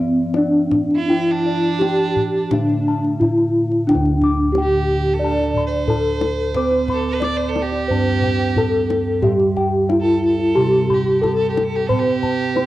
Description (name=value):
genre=Javanese gamelan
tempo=90 BPM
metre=4/4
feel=straight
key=D slendro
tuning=A4 = 440 Hz
part: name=gamelan-type bronze metallophone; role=melody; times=0.0-12.7 s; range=C4-40c to D5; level=-18 LUFS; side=equal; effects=cassette tape
part: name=gamelan-type bronze metallophone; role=accompaniment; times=0.0-12.7 s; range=D3 to D4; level=-25 LUFS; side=right 6 dB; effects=cassette tape
part: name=gamelan-type bossed gongs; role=arpeggios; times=0.0-12.7 s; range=D5 to D6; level=-30 LUFS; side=left 5 dB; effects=cassette tape
part: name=gamelan-type bossed gongs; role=bass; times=0.0-12.7 s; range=D2 to C5-40c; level=-23 LUFS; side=left 1 dB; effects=none
part: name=kendang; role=percussion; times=0.3-12.7 s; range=none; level=-26 LUFS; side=left 3 dB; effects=none
part: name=rich violin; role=second line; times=1.0-12.7 s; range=D4 to D5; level=-26 LUFS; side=right 5 dB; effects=cassette tape
room=light reverb, small room ambience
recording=home recording on cassette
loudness=-16 LUFS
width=side -15 dB against mid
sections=0.0-3.9 A section; 3.9-12.7 B section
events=none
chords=none